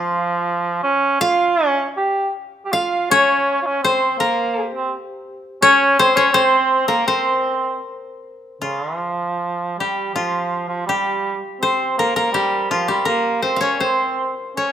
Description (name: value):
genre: japanese traditional, Japanese chamber music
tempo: 76-84 BPM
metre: 2/4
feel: rubato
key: C in sen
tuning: A4 = 439 Hz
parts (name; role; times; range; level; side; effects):
- koto; melody; 0.0-14.7 s; F4 to F5; -19 LUFS; left 3 dB; none
- dark cor anglais; second line; 0.0-14.7 s; F3 to G4; -19 LUFS; right 3 dB; none
room: light reverb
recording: close, detailed microphones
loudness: -16 LUFS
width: side -10 dB against mid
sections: 0.0-8.6 A section; 8.6-14.7 B section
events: none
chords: none